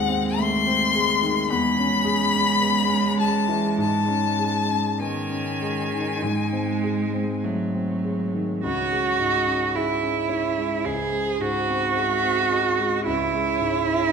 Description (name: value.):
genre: classical, slow romantic movement for piano trio.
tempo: 49-57 BPM.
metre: 4/4.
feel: rubato.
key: C# minor.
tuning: A4 = 440 Hz.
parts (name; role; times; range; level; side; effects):
clear violin; melody; 0.0-14.1 s; B#4 to B#5; -26 LUFS; left 6 dB; none.
clear cello; second line; 0.0-14.1 s; D#3 to G#4; -23 LUFS; right 5 dB; none.
dark grand piano; accompaniment; 0.0-14.1 s; C#2 to G#4; -26 LUFS; left 3 dB; none.
room: wet recital hall reverb, RT60 1.5 s.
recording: none.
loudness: -20 LUFS.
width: side -6 dB against mid.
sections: 0.0-8.6 A section; 8.6-14.1 B section.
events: none.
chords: 0.0 G#7/D#; 1.5 C#m/E; 3.8 G#sus4; 6.2 G#; 8.6 C#m; 10.8 G#/C#; 13.1 C#m.